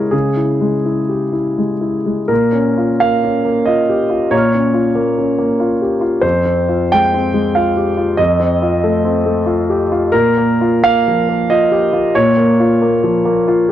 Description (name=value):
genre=neoclassical minimalist piano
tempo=81-96 BPM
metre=3/4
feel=rubato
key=unclear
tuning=A4 = 440 Hz
part: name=warm concert grand piano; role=solo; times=0.0-13.7 s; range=F2 to F6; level=-12 LUFS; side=equal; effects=none
room=light reverb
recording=dry, close 1970s-style studio recording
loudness=-12 LUFS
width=side -11 dB against mid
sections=0.0-2.3 A section; 2.3-13.7 B section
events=none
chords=0.0 Dbm; 2.3 Bbm; 6.2 Fm; 8.2 F; 10.1 Bbm